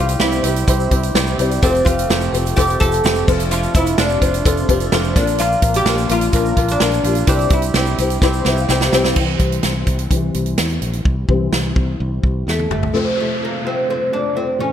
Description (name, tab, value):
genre	piano-driven pop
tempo	127 BPM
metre	4/4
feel	straight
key	unclear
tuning	A4 = 435 Hz
part	oud	melody	0.0-8.4, 12.5-14.7 s	A3 to A4	-20 LUFS	equal	none
part	felt-muted upright piano	accompaniment	0.0-14.7 s	F2 to G5	-21 LUFS	left 4 dB	ensemble chorus
part	direct-recorded clean electric guitar	riff	0.0-9.2 s	F2 to G4	-25 LUFS	right 6 dB	none
part	fingered electric bass	bass	0.0-12.9 s	F1 to E2	-21 LUFS	equal	none
part	natural country drum kit	drums	0.1-12.9 s	crash cymbal, hi-hat, kick drum, snare drum, toms	-18 LUFS	right 1 dB	gated reverb
part	tube shaker	percussion	0.1-9.2 s	none	-33 LUFS	right 5 dB	none
part	downlifter	sound effects	12.9-14.7 s	none	-27 LUFS	equal	none
room	light reverb, small room ambience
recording	bright 1980s-style digital production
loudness	-14 LUFS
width	side -10 dB against mid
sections	0.0-9.2 A section; 9.2-12.9 B section; 12.9-14.7 C section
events	drum fill 8.2-9.2, 12.5-12.9; felt piano fill 8.2-9.2; felt piano solo 9.2-12.9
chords	0.0 C; 1.6 Fadd9; 3.3 Dm7/F; 5.2 Bb; 7.3 C; 12.9 F